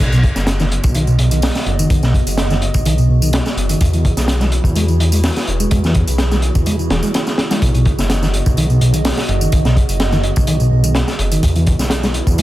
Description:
breakbeat, breaks; 126 BPM; 4/4; swing 53% on 16ths; B major; A4 = 440 Hz
warbly tape-like pad; sustained chords; 0.5-12.4 s; E3 to D#5; -24 LUFS; right 2 dB; chorus, built-in reverb, sidechain pumping
detuned saw bass; bass; 0.0-12.4 s; E1 to E2; -17 LUFS; equal; tube saturation
crunchy breakbeat drum kit; drums; 0.0-12.4 s; hi-hat, kick drum, snare drum; -17 LUFS; equal
tambourine; drums; 0.0-12.4 s; -29 LUFS; equal; overdrive
mellow tonewheel organ; riff; 0.1-12.4 s; B2 to G#3; -18 LUFS; equal; chorus vibrato, slow rotary speaker, tube saturation
small room reverb; -13 LUFS; side -15 dB against mid
0.0-12.4 A section
0.0 B6; 3.8 Eadd9; 7.6 B6; 11.4 Eadd9

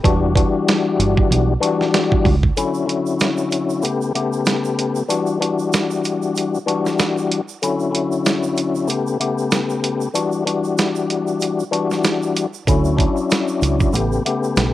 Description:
hip hop, boom-bap hip-hop; 95 BPM; 4/4; swing 57% on 16ths; E dorian; A4 = 440 Hz
percussive tonewheel organ; accompaniment; 0.0-14.7 s; C#3 to G4; -19 LUFS; left 4 dB; chorus vibrato, stopped rotary speaker, cassette tape, high-pass filter, low-pass filter
deep dub fingered electric bass; bass; 0.0-2.5, 12.7-14.7 s; E1 to D2; -19 LUFS; right 2 dB
dusty soul sampler-style drum kit; drums; 0.0-14.7 s; hi-hat, kick drum, snare drum; -19 LUFS; right 2 dB
egg shaker; percussion; 2.6-14.7 s; -36 LUFS; right 12 dB
light reverb; home recording on cassette; -16 LUFS; side -14 dB against mid
0.0-2.6 A section; 2.6-14.7 A section
break 2.6-12.7
0.0 Em9; 2.6 Dmaj9; 3.8 A9; 5.1 Em9; 7.6 Dmaj9; 8.9 A9; 10.1 Em9; 12.7 Dmaj9; 13.9 A9

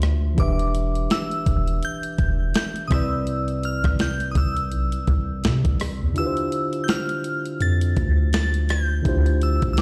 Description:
contemporary R&B; 83 BPM; 4/4; swing 58% on 16ths; D dorian; A4 = 440 Hz
mellow tine electric piano; accompaniment; 0.0-9.8 s; C3 to E5; -30 LUFS; equal
long sustained 808-style bass; bass; 0.0-9.8 s; E1 to C3; -24 LUFS; equal
clean 12-bit digital drum machine; drums; 0.0-9.8 s; hi-hat, kick drum, rim click, snare drum; -25 LUFS; equal
glassy synth bell; melody; 0.4-9.8 s; D6 to A6; -31 LUFS; equal; chorus, tremolo, digital delay
digital ambience; played on a big sound system in a bare room, large studio reverb; -22 LUFS; mono
0.0-9.8 A section
kick muted 6.2-7.6
0.4 Em7; 2.9 Cmaj9; 6.2 Dm11

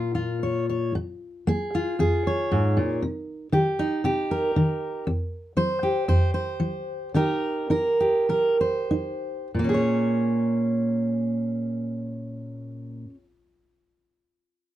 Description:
folk, solo fingerstyle acoustic guitar; 95-119 BPM; 4/4; rubato; Bb dorian; A4 = 440 Hz
fingerpicked steel-string acoustic guitar; solo; 0.0-13.2 s; F2 to Db5; -23 LUFS; equal
light reverb; dark, warm production; -22 LUFS; side -13 dB against mid
0.9-9.5 A section; 9.5-14.4 B section
slowing down 5.1-9.5
0.0 Bbm; 0.9 Bbm7; 3.0 Cm7; 5.1 Fsus2; 7.1 Eb; 9.5 Bbm7

